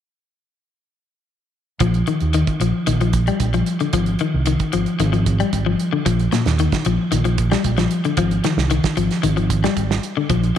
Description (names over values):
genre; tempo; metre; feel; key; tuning
afrobeat; 113 BPM; 4/4; straight; Bb mixolydian; A4 = 440 Hz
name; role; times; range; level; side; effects
electric guitar at the edge of break-up; arpeggios; 1.8-10.5 s; Bb2 to G3; -19 LUFS; left 5 dB; none
fingered electric bass; bass; 1.8-10.5 s; Ab1 to Eb2; -20 LUFS; right 2 dB; none
cloth-damped thuddy drum kit; drums; 1.8-10.6 s; hi-hat, kick drum, snare drum; -24 LUFS; right 6 dB; none
room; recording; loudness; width
wet echo chamber reverb, RT60 2.1 s; 1960s-style stereo; -16 LUFS; side -10 dB against mid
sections
1.8-10.6 A section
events
none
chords
1.8 Bbsus4; 3.9 Ab5; 6.1 Bbsus4; 8.2 Ab5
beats
| 1.81 2.34 2.87 3.40 | 3.94 4.47 5.00 5.53 | 6.06 6.59 7.12 7.65 | 8.18 8.71 9.24 9.77 | 10.30